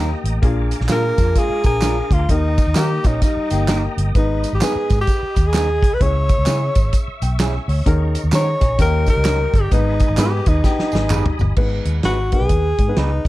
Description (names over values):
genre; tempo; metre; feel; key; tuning
uptempo 1960s-style soul; 129 BPM; 4/4; swing 61% on 8ths; G# harmonic minor; A4 = 437 Hz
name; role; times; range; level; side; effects
tonewheel organ; sustained chords; 0.0-11.6 s; D#5 to E6; -33 LUFS; equal; slow rotary speaker, chorus vibrato
vintage hollow-body jazz guitar; riff; 0.0-4.1, 8.6-11.6 s; E#3 to A#4; -27 LUFS; left 5 dB; none
electric guitar through a small old amp; stabs; 0.0-13.1 s; G3 to B4; -28 LUFS; right 4 dB; none
vintage muted fingered electric bass; bass; 0.0-13.3 s; G1 to D#3; -20 LUFS; equal; none
warm soul drum kit; drums; 0.3-13.3 s; crash cymbal, hi-hat, kick drum, snare drum, toms; -19 LUFS; equal; none
warm upright piano; accompaniment; 0.4-13.3 s; G#2 to G#5; -26 LUFS; left 3 dB; none
tambourine and handclaps; percussion; 0.7-11.5 s; none; -32 LUFS; right 5 dB; none
breathy tenor saxophone; melody; 0.9-13.3 s; D#4 to C#5; -21 LUFS; equal; none
room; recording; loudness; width
light reverb, small room ambience; dark, warm production; -15 LUFS; side -17 dB against mid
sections
0.0-11.6 A section; 11.6-13.3 B section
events
upright piano fill 6.9-7.9; drum fill 10.6-11.6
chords
0.4 A#7; 2.3 D#; 4.1 G#m; 6.0 C#m; 7.9 D#7sus4; 8.8 D#7; 9.7 G#m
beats
| 0.43 0.89 1.36 1.82 | 2.29 2.75 3.22 3.68 | 4.15 4.61 5.08 5.54 | 6.01 6.47 6.93 7.40 | 7.86 8.33 8.79 9.26 | 9.72 10.18 10.65 11.11 | 11.57 12.04 12.50 12.96